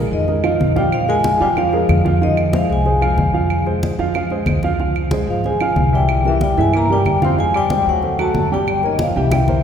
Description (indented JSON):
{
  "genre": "Afro-Cuban jazz",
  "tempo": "186 BPM",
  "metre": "4/4",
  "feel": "straight",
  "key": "F minor",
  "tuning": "A4 = 440 Hz",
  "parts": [
    { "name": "warm grand piano", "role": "accompaniment", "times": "0.0-9.6 s", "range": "E3 to G5", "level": "-20 LUFS", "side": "right 3 dB", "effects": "none" },
    { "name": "upright bass", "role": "bass", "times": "0.0-9.6 s", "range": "G1 to G2", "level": "-20 LUFS", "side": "equal", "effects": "none" },
    { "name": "vibraphone with medium hard mallets", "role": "melody", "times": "0.1-9.6 s", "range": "Eb5 to C6", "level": "-20 LUFS", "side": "left 2 dB", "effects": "none" },
    { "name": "breathy tenor saxophone", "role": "second line", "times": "0.1-9.6 s", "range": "Eb3 to C4", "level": "-24 LUFS", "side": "left 4 dB", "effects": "none" },
    { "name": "congas", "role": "percussion", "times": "0.3-9.6 s", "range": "none", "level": "-22 LUFS", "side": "equal", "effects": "none" },
    { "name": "claves", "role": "percussion", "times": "0.4-9.5 s", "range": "none", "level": "-32 LUFS", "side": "right 6 dB", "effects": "none" }
  ],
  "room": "wet church reverb, RT60 2.6 s",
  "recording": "recorded in a church or concert hall",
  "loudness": "-14 LUFS",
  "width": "side -8 dB against mid",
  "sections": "0.0-9.6 A section",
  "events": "drum fill 9.3-9.6",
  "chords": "0.0 Bb5; 2.2 Fm; 4.8 Dbmaj7; 6.1 C7; 7.4 Fm; 8.0 D7; 8.7 Gdim"
}